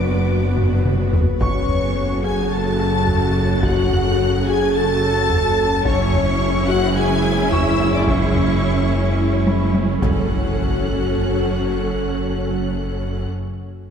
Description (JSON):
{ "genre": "cinematic, hybrid orchestral and electronic film score", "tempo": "108 BPM", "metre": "4/4", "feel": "straight", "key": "F# minor", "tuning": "A4 = 440 Hz", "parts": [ { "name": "rich symphonic violin section", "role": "melody", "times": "0.0-13.3 s", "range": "C#6 to A6", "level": "-30 LUFS", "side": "left 2 dB", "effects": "none" }, { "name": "warm symphonic violin section", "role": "second line", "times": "0.0-13.3 s", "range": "C#5 to A5", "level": "-28 LUFS", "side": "left 4 dB", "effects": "none" }, { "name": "warm symphonic viola section", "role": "accompaniment", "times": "0.0-13.3 s", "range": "C#3 to A4", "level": "-26 LUFS", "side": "right 2 dB", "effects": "none" }, { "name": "glassy FM pad", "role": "sustained chords", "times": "0.0-13.3 s", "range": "F#3 to B4", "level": "-24 LUFS", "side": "equal", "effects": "ensemble chorus, built-in reverb" }, { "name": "mellow French horn section", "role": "sustained chords", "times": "0.0-13.3 s", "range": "C#4 to A4", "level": "-25 LUFS", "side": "left 2 dB", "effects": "none" }, { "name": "clear symphonic cello section", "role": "bass", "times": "0.0-13.3 s", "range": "F#2", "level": "-26 LUFS", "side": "right 5 dB", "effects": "none" }, { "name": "pure sine sub bass", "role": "bass", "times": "0.0-13.3 s", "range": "F#1", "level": "-29 LUFS", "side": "equal", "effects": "none" }, { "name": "rich symphonic double bass section", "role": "bass", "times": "0.0-13.3 s", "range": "F#1", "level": "-23 LUFS", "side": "equal", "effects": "none" }, { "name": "dark grand piano", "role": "texture", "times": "0.0-10.3 s", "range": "C#5 to C#6", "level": "-31 LUFS", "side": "left 1 dB", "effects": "ping-pong delay" }, { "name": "solo taiko drums", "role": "drums", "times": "0.6-11.1 s", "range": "none", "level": "-24 LUFS", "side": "equal", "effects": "none" }, { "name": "impact", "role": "sound effects", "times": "10.0-13.3 s", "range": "none", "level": "-28 LUFS", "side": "equal", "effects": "none" } ], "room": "wet scoring stage reverb, RT60 2.0 s", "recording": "heard from further back in the room", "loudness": "-16 LUFS", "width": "side -7 dB against mid", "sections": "0.0-10.3 A section; 10.3-12.5 B section", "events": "drum fill 0.6-1.4, 9.5-10.3; impact 10.3-12.5", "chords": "0.0 Bm/F#; 1.4 F#m; 5.9 C#m/F#; 10.0 F#m" }